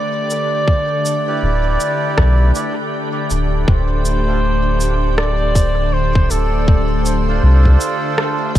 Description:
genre	ambient dub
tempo	80 BPM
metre	4/4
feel	swing 60% on 16ths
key	D dorian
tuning	A4 = 440 Hz
part	trumpet with bucket mute	melody	0.0-7.8 s	A4 to D5	-22 LUFS	right 1 dB	dub echo
part	soft additive organ-like pad	sustained chords	0.0-8.6 s	D3 to D5	-22 LUFS	left 1 dB	ensemble chorus, built-in reverb
part	electronic shaker and rim click	drums	0.3-8.6 s	none	-24 LUFS	right 1 dB	dub echo
part	electronic kick drum	drums	0.7-8.6 s	none	-14 LUFS	equal	none
part	melodica	stabs	1.3-8.6 s	D4 to D5	-25 LUFS	right 3 dB	vintage 12-bit sampler grit, dub echo
part	soft dub sub bass	bass	1.4-8.6 s	D1 to C2	-15 LUFS	equal	none
room	light reverb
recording	none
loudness	-14 LUFS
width	side -12 dB against mid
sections	0.0-3.7 A section; 3.7-8.6 B section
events	none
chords	0.0 Em7; 3.7 Dm7

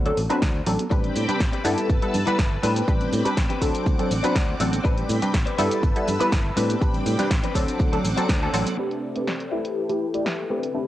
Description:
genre	filtered disco house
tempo	122 BPM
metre	4/4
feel	straight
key	A dorian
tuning	A4 = 441 Hz
part	funky polysynth comp	accompaniment	0.0-10.9 s	F#3 to D5	-25 LUFS	equal	chorus, phaser, sidechain pumping, low-pass filter, cassette tape
part	direct-recorded clean electric guitar	riff	0.0-10.9 s	C4 to C5	-31 LUFS	left 8 dB	phaser, sidechain pumping, low-pass filter, cassette tape
part	fingered electric bass	bass	0.0-8.6 s	G1 to A2	-27 LUFS	equal	sidechain pumping, low-pass filter
part	punchy analog drum machine	drums	0.1-10.7 s	hi-hat, shaker, snare drum	-31 LUFS	equal	sidechain pumping on hats, low-pass filter on hats, cassette tape, low-pass filter on snare, sidechain pumping on perc, low-pass filter on perc, low-pass filter on room
part	tambourine and congas	percussion	0.2-8.8 s	none	-37 LUFS	right 9 dB	none
part	electronic kick drum	drums	0.4-8.4 s	none	-23 LUFS	equal	cassette tape
part	string machine, full ensemble	sustained chords	0.9-10.9 s	C4 to E6	-31 LUFS	equal	phaser, ensemble chorus, sidechain pumping, low-pass filter, cassette tape
room	light reverb, digital ambience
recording	home recording on cassette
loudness	-20 LUFS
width	side -14 dB against mid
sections	0.0-8.8 A section; 8.8-10.9 B section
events	band accent 8.3; filter sweep 8.8-10.9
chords	0.0 D7; 0.9 Am11; 1.7 G69; 2.6 Am11; 3.6 D7; 4.8 Am11; 5.6 G69; 6.6 Am11; 7.6 D7; 8.8 Am11; 9.5 G69

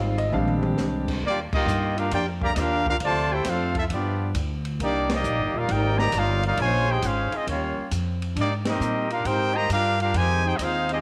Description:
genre	jazz, big band swing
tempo	134 BPM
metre	4/4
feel	swing 67% on 8ths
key	Eb major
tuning	A4 = 440 Hz
part	clear concert grand piano	accompaniment	0.0-1.2 s	G3 to F5	-29 LUFS	equal	none
part	warm saxophone section	sustained chords	0.0-1.2 s	D3 to G4	-39 LUFS	equal	none
part	upright bass	bass	0.0-11.0 s	Eb1 to Bb2	-29 LUFS	equal	none
part	open jazz drum kit	drums	0.2-11.0 s	crash cymbal, hi-hat, kick drum, ride cymbal, snare drum, toms	-35 LUFS	equal	none
part	mellow trombone section	second line	1.2-11.0 s	C3 to G4	-33 LUFS	equal	none
part	clear trumpet section	melody	1.3-11.0 s	Bb3 to Bb5	-27 LUFS	equal	slapback echo
room	moderate echo chamber reverb, RT60 1.4 s, studio ambience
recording	none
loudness	-24 LUFS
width	mono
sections	0.0-1.2 A section; 1.2-11.0 B section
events	grand piano solo 0.0-1.2; drum fill 0.3-0.8; band accent 1.4, 5.0, 8.6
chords	0.3 Bb13; 1.2 Ebmaj9; 3.0 Dm7; 3.9 G7; 4.8 Cm11; 6.6 Bbm9; 7.5 Eb9; 8.4 Abmaj9; 10.1 Fm9

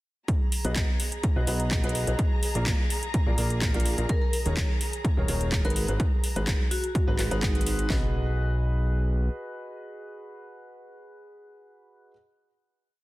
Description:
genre	piano house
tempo	126 BPM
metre	4/4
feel	straight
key	B major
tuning	A4 = 440 Hz
part	dark studio violin section	sustained chords	0.3-7.9 s	G#4 to A#5	-38 LUFS	equal	sidechain pumping
part	house drum kit	drums	0.3-8.0 s	handclaps, kick drum, snare drum	-26 LUFS	equal	overdrive
part	house drum kit	drums	0.3-7.9 s	handclaps, hi-hat	-33 LUFS	equal	overdrive
part	clear upright piano	riff	0.6-12.1 s	D#3 to D#5	-34 LUFS	equal	sidechain pumping, low-pass filter, tape echo
part	fat analog bass	bass	0.6-9.3 s	D#1 to B1	-27 LUFS	equal	tube saturation, sidechain pumping
part	vibraphone with medium mallets	melody	4.1-7.9 s	D#4 to A#4	-35 LUFS	left 1 dB	tape echo
room	digital ambience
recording	dense, heavily limited modern master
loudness	-24 LUFS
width	side -18 dB against mid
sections	0.3-7.9 groove; 7.9-11.7 final chord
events	none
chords	0.3 B6; 2.2 A#7; 4.1 D#7sus4; 5.8 G#m7; 7.9 B6

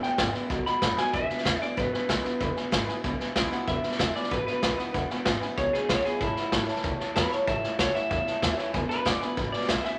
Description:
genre	rockabilly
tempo	189 BPM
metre	4/4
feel	straight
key	E major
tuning	A4 = 441 Hz
part	electric guitar through a small old amp	melody	0.0-10.0 s	E4 to B5	-32 LUFS	equal	none
part	picked swing-style acoustic guitar	accompaniment	0.0-10.0 s	E2 to F#4	-40 LUFS	equal	none
part	warm upright piano	accompaniment	0.0-9.9 s	B4 to B5	-39 LUFS	equal	none
part	electric guitar through a small old amp	riff	0.0-10.0 s	E2 to G#3	-39 LUFS	equal	none
part	upright bass	bass	0.0-9.9 s	E1 to F#2	-39 LUFS	equal	none
part	vintage drum kit	drums	0.0-9.9 s	hi-hat, kick drum, snare drum	-31 LUFS	equal	none
room	light reverb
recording	none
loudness	-27 LUFS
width	mono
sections	0.0-1.1 A section; 1.1-10.0 B section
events	drum fill 1.0; clean electric guitar solo 1.1-10.0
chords	0.0 E; 0.5 B; 1.1 E; 6.2 A; 8.7 E

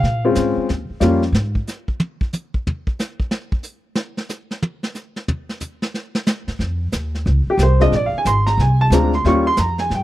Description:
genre	jazz piano trio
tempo	182 BPM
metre	4/4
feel	swing 64% on 8ths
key	Eb mixolydian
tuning	A4 = 436 Hz
part	warm baby grand piano	melody	0.0-1.2, 7.5-10.0 s	G3 to Db6	-17 LUFS	equal	none
part	upright bass	bass	0.0-1.5, 6.5-10.0 s	Ab1 to Bb2	-18 LUFS	equal	none
part	vintage brush drum kit	drums	0.0-10.0 s	brushed snare drum, hi-hat, kick drum, snare drum, toms	-22 LUFS	equal	none
room	little or no reverb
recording	dry, close 1970s-style studio recording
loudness	-17 LUFS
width	side -15 dB against mid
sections	0.0-10.0 A section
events	grand piano solo 0.0-10.0; drum solo 1.3-6.6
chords	0.0 Bbm7; 0.7 Eb9; 1.3 N.C.; 6.6 F7(no3); 7.9 Bb9; 9.2 Eb9

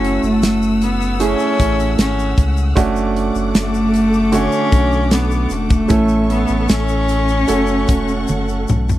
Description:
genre	pop ballad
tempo	76 BPM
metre	4/4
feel	straight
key	F# minor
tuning	A4 = 440 Hz
part	rich cello	melody	0.0-8.7 s	A3 to C#4	-18 LUFS	left 2 dB	none
part	clear baby grand piano	accompaniment	0.0-9.0 s	A2 to A4	-20 LUFS	right 5 dB	none
part	warm symphonic string section	sustained chords	0.0-9.0 s	A3 to E6	-27 LUFS	equal	none
part	saturated sub bass	bass	0.0-9.0 s	E1 to C#2	-20 LUFS	equal	none
part	modern studio drum kit	drums	0.0-9.0 s	hi-hat, kick drum, snare drum, toms	-16 LUFS	equal	none
part	tube shaker	percussion	0.2-9.0 s	none	-36 LUFS	left 16 dB	none
room	small room ambience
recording	dry, close 1970s-style studio recording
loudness	-14 LUFS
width	side -14 dB against mid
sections	0.0-9.0 A section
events	drum fill 8.3-9.0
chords	0.0 F#m7; 2.8 Dmaj7/F#; 5.9 A; 7.5 F#m

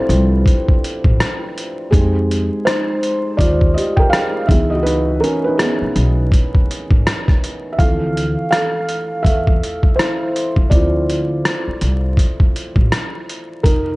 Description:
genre	lo-fi hip hop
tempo	82 BPM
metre	4/4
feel	swing 62% on 16ths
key	unclear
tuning	A4 = 440 Hz
part	felt-muted upright piano	accompaniment	0.0-14.0 s	E3 to G5	-19 LUFS	equal	cassette tape, low-pass filter
part	upright bass	bass	0.1-14.0 s	F1 to F2	-18 LUFS	equal	none
part	boom bap sampler-style drum kit	drums	0.1-13.9 s	hi-hat, kick drum, rim click	-16 LUFS	equal	vintage 12-bit sampler grit
room	light reverb, studio reverb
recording	vinyl crackle, nothing above 10.7 kHz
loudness	-14 LUFS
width	side -22 dB against mid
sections	0.0-14.0 A section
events	felt piano solo 0.0-14.0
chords	0.0 Dm9; 1.9 Fm9; 4.5 C#m9; 7.8 Dm9

